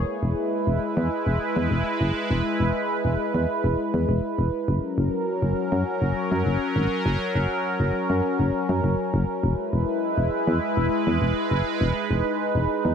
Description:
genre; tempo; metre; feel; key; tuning
synth-pop; 101 BPM; 4/4; straight; unclear; A4 = 440 Hz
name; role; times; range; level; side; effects
sweeping resonant pad; sustained chords; 0.0-12.9 s; F#3 to B4; -24 LUFS; equal; chorus
solid FM bass; bass; 0.0-12.9 s; E1 to F#2; -23 LUFS; equal; none
room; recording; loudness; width
light reverb; none; -22 LUFS; side -7 dB against mid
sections
0.0-12.9 A section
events
none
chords
0.0 E; 4.7 F#; 9.4 E

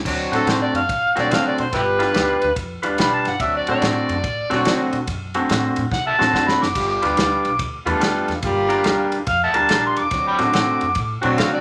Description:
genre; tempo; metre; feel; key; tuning
electric blues shuffle; 143 BPM; 4/4; swing 64% on 8ths; D mixolydian; A4 = 441 Hz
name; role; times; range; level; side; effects
warm horn section; stabs; 0.0-11.6 s; F#3 to A4; -26 LUFS; equal; none
upright bass; bass; 0.1-11.6 s; F#1 to C3; -32 LUFS; equal; none
natural country drum kit; drums; 0.1-11.5 s; crash cymbal, kick drum, ride cymbal, snare drum; -28 LUFS; equal; none
electric guitar through a small old amp; riff; 0.3-11.6 s; D3 to B4; -24 LUFS; equal; none
overdriven harmonica; second line; 0.4-11.6 s; E4 to D6; -22 LUFS; equal; none
room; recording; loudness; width
light reverb; none; -19 LUFS; mono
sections
0.1-11.6 A section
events
harmonica solo 0.1-11.6; drum fill 5.9-6.8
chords
0.1 D7; 1.7 G7; 3.4 D7; 6.8 G7; 8.4 Gm7; 10.1 D7

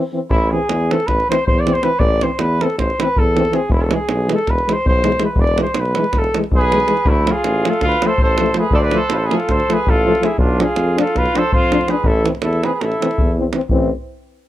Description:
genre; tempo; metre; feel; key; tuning
balkan folk, Balkan brass band; 323 BPM (eighths); 9/8; straight; A harmonic minor; A4 = 440 Hz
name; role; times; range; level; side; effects
mellow French horn; accompaniment; 0.0-13.9 s; G#3 to D4; -22 LUFS; left 6 dB; none
mellow trombone; accompaniment; 0.1-13.9 s; E3 to F3; -24 LUFS; right 5 dB; none
warm flugelhorn; melody; 0.3-13.4 s; E4 to D5; -19 LUFS; equal; plate reverb
warm tuba; bass; 0.3-13.9 s; E1 to F2; -20 LUFS; equal; none
davul; percussion; 0.3-13.9 s; none; -20 LUFS; equal; none
mellow trumpet; second line; 6.6-13.4 s; A3 to B4; -22 LUFS; right 2 dB; plate reverb
room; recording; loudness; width
moderate small room reverb, RT60 0.6 s; none; -14 LUFS; side -14 dB against mid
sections
0.3-13.7 A section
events
speeding up 0.0-14.5; break 0.0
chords
0.3 Am; 3.7 E; 7.0 Dm; 10.4 Bdim; 12.0 Am

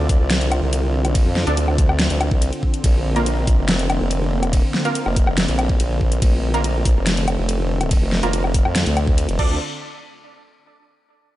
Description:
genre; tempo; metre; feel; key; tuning
heavy wobble dubstep; 142 BPM; 4/4; half-time; unclear; A4 = 441 Hz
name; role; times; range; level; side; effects
supersaw chords; sustained chords; 0.0-9.6 s; D3 to F4; -25 LUFS; equal; sidechain pumping, low-pass filter
formant-sweep wobble bass; bass; 0.0-9.6 s; F1 to F2; -20 LUFS; equal; chorus, overdrive
dubstep drum kit; drums; 0.1-9.5 s; crash cymbal, hi-hat, ride cymbal, snare drum, woodblock; -24 LUFS; left 1 dB; overdrive, studio reverb
electronic kick drum; drums; 0.1-9.5 s; none; -17 LUFS; equal; overdrive, studio reverb
orchestra-hit-like synth stab; stabs; 1.5-9.5 s; Bb3 to D5; -27 LUFS; right 3 dB; built-in reverb, tape echo
room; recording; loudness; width
little or no reverb; nothing above 10.7 kHz; -16 LUFS; side -15 dB against mid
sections
0.0-9.6 A section; 9.6-11.3 B section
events
drop 0.0-9.6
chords
0.0 Dm7; 2.8 Bbadd9; 9.4 Dm7; 9.6 N.C.

